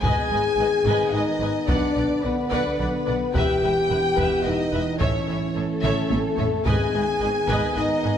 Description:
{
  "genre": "cinematic, epic orchestral film score",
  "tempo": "109 BPM",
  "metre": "3/4",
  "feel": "straight",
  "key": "G# phrygian",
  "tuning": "A4 = 440 Hz",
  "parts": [
    { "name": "rich symphonic violin section", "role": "melody", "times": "0.0-8.1 s", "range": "E5 to G#5", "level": "-33 LUFS", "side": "left 2 dB", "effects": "none" },
    { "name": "warm symphonic violin section", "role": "second line", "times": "0.0-8.2 s", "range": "A4 to G#5", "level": "-29 LUFS", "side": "left 2 dB", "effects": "none" },
    { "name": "rich symphonic viola section", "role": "accompaniment", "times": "0.0-8.1 s", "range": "A4 to D#5", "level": "-30 LUFS", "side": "equal", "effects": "none" },
    { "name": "mellow French horn section", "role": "sustained chords", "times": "0.0-8.2 s", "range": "A3 to G#4", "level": "-24 LUFS", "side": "left 3 dB", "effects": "none" },
    { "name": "mellow trombone section", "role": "sustained chords", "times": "0.0-8.2 s", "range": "D3 to C#4", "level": "-30 LUFS", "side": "right 3 dB", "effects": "none" },
    { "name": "clear studio double bass section", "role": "bass", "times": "0.0-8.1 s", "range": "E1 to B1", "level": "-29 LUFS", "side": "right 2 dB", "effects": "none" },
    { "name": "rich symphonic cello section", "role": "bass", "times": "0.0-8.1 s", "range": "E2 to B2", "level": "-33 LUFS", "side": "right 2 dB", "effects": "none" },
    { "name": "taiko ensemble", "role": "drums", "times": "0.0-8.0 s", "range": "none", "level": "-28 LUFS", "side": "equal", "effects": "none" },
    { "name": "timpani", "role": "percussion", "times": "6.7-7.5 s", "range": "G#2", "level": "-32 LUFS", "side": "equal", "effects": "none" }
  ],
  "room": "wet scoring stage reverb, RT60 1.8 s",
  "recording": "none",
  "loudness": "-20 LUFS",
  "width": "side -9 dB against mid",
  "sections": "0.0-8.2 A section",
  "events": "drum fill 5.8-6.7",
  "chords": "0.0 G#m; 1.7 Bm; 3.4 Em; 5.0 A; 6.7 G#m"
}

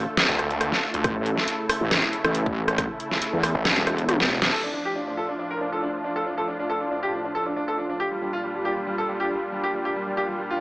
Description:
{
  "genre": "heavy wobble dubstep",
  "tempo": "138 BPM",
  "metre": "4/4",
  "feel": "half-time",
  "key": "D harmonic minor",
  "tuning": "A4 = 440 Hz",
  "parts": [
    { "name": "supersaw pad", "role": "sustained chords", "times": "0.0-10.6 s", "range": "A2 to A4", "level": "-30 LUFS", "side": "equal", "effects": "sidechain pumping, low-pass filter" },
    { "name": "wobble bass", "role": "bass", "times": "0.0-4.5 s", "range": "E1 to E2", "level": "-25 LUFS", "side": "equal", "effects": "chorus, overdrive" },
    { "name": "dubstep drum kit", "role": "drums", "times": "0.2-4.6 s", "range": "crash cymbal, hi-hat, rim click, snare drum, toms", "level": "-23 LUFS", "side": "equal", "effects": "none" },
    { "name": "snarling distorted saw bass", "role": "bass", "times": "0.3-3.7 s", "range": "A1 to D2", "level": "-27 LUFS", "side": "equal", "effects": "overdrive" },
    { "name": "electronic kick drum", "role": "drums", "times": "1.0-4.3 s", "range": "none", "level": "-32 LUFS", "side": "equal", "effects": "none" },
    { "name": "bright grand piano", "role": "melody", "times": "4.5-10.6 s", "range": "G3 to Bb4", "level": "-27 LUFS", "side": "equal", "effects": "none" },
    { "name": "deep dark ambient pad", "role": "texture", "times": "5.8-10.6 s", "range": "F4 to A5", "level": "-34 LUFS", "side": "right 1 dB", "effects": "chorus, built-in reverb, sidechain pumping" }
  ],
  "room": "moderate lush hall reverb, RT60 1.6 s",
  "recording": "AM radio sound",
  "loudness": "-22 LUFS",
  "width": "side -22 dB against mid",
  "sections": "0.0-4.5 A section; 4.5-10.6 B section",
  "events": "drop 0.0-4.5; drum fill 4.1-4.5; band accent 4.4",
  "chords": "0.0 Dm; 1.0 A; 4.5 Dm; 8.0 Gm7"
}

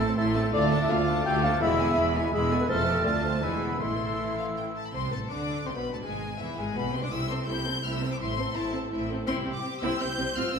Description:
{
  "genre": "quick classical-period movement for symphony orchestra",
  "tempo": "166 BPM",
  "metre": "3/4",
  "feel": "straight",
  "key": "A minor",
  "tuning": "A4 = 440 Hz",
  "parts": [
    { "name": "rich chamber violin section", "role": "melody", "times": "0.0-10.6 s", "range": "E5 to G6", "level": "-36 LUFS", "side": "left 4 dB", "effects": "none" },
    { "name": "rich studio violin section", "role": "second line", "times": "0.0-10.6 s", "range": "E4 to E5", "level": "-36 LUFS", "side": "left 2 dB", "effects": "none" },
    { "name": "silver concert flute", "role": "second line", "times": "0.0-4.7 s", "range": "D6 to F6", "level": "-33 LUFS", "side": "equal", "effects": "none" },
    { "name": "warm oboe", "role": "second line", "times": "0.0-4.8 s", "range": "A5 to C6", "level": "-36 LUFS", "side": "equal", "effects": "none" },
    { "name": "dark bassoon", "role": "accompaniment", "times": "0.0-4.8 s", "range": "G#3 to A3", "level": "-35 LUFS", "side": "right 1 dB", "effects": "none" },
    { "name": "rich chamber viola section", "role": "accompaniment", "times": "0.0-10.6 s", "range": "E3 to F4", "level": "-33 LUFS", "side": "equal", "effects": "none" },
    { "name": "clear chamber double bass section", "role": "bass", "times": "0.0-10.6 s", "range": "E1 to D2", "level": "-33 LUFS", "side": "right 2 dB", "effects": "none" },
    { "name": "clear studio cello section", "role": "bass", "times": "0.0-10.6 s", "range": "D2 to D3", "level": "-33 LUFS", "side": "right 3 dB", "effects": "none" },
    { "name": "dark clarinet", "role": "second line", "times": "0.5-4.8 s", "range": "E4 to G5", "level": "-31 LUFS", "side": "left 1 dB", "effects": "none" },
    { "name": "warm French horn section", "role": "sustained chords", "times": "0.5-4.7 s", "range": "E3 to G4", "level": "-32 LUFS", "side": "left 2 dB", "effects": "none" }
  ],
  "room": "wet recital hall reverb, RT60 1.5 s",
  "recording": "recorded in a church or concert hall",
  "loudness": "-25 LUFS",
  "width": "side -6 dB against mid",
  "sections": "0.0-4.9 A section; 4.9-10.6 A section",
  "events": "none",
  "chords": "0.0 Am; 0.5 Dm; 1.6 E; 2.7 F; 3.1 Dm; 3.4 E; 3.8 Am; 6.0 E7; 7.1 Am/C; 8.2 Am; 9.3 C"
}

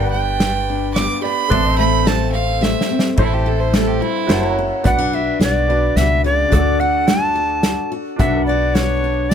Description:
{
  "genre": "honky-tonk and classic country",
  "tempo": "108 BPM",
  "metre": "3/4",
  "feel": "straight",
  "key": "A minor, B minor from 4.9 s",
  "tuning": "A4 = 440 Hz",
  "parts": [
    { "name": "rich fiddle", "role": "second line", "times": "0.0-4.6 s", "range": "E4 to D6", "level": "-21 LUFS", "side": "right 7 dB", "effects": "none" },
    { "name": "clear upright piano", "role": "accompaniment", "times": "0.0-9.3 s", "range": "D4 to F#5", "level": "-27 LUFS", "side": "right 5 dB", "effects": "none" },
    { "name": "picked steel-string acoustic guitar", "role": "accompaniment", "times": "0.0-9.3 s", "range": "E2 to F#4", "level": "-23 LUFS", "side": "left 4 dB", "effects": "none" },
    { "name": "pedal steel guitar", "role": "sustained chords", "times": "0.0-9.3 s", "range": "D4 to A#5", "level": "-24 LUFS", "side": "left 3 dB", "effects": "none" },
    { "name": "upright bass", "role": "bass", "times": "0.0-9.3 s", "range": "F#1 to D2", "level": "-21 LUFS", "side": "equal", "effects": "none" },
    { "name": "unplugged drum kit", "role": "drums", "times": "0.4-9.3 s", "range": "hi-hat, kick drum, ride cymbal, snare drum", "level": "-20 LUFS", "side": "equal", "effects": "none" },
    { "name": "alto recorder", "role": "melody", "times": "4.9-9.3 s", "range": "C#5 to A5", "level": "-19 LUFS", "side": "equal", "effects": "none" }
  ],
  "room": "little or no reverb",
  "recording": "close, detailed microphones",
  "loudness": "-14 LUFS",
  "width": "side -8 dB against mid",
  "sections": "0.0-3.2 A section; 3.2-4.9 B section; 4.9-9.3 C section",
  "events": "fiddle solo 0.0-3.2; drum fill 2.6-3.2",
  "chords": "0.0 G; 1.5 Am; 4.3 F#7; 4.9 Bm; 6.5 D; 8.2 Bm"
}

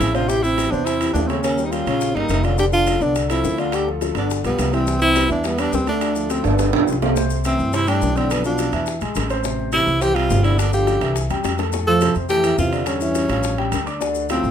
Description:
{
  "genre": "Afro-Cuban jazz",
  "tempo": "210 BPM",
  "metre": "4/4",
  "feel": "straight",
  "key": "C major",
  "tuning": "A4 = 440 Hz",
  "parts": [
    { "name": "breathy tenor saxophone", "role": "melody", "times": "0.0-14.5 s", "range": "B3 to A4", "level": "-21 LUFS", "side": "equal", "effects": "none" },
    { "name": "mellow trombone", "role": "second line", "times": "0.0-14.5 s", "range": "F2 to E4", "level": "-26 LUFS", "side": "right 6 dB", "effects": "none" },
    { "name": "warm concert grand piano", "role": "accompaniment", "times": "0.0-14.5 s", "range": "A2 to D6", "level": "-24 LUFS", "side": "left 3 dB", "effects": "none" },
    { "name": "upright bass", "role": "bass", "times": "0.0-14.5 s", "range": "F1 to G2", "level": "-23 LUFS", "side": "equal", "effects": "none" },
    { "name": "bongos", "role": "percussion", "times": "0.0-14.4 s", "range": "none", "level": "-30 LUFS", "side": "left 8 dB", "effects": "none" },
    { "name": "maracas", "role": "percussion", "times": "0.0-14.5 s", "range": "none", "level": "-34 LUFS", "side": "left 6 dB", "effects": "none" },
    { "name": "timbales", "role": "percussion", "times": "0.0-14.4 s", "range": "none", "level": "-27 LUFS", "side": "right 7 dB", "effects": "none" }
  ],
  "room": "light reverb",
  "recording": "minimal, uncompressed stereo recording",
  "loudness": "-17 LUFS",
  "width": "side -8 dB against mid",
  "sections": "0.0-7.2 A section; 7.2-14.5 B section",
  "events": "drum fill 6.4-7.2, 11.3-11.7",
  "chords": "0.3 Am7; 1.4 Eb9; 2.6 F6; 3.7 Dm; 4.3 G6; 4.9 Cmaj9; 6.0 Dm; 6.6 G7; 7.2 C69; 8.3 Bdim; 8.9 Eaug; 9.4 Am7; 10.6 G5; 11.2 C; 11.7 Fmaj9; 12.9 Em7; 13.4 Aaug7; 14.0 Dm7"
}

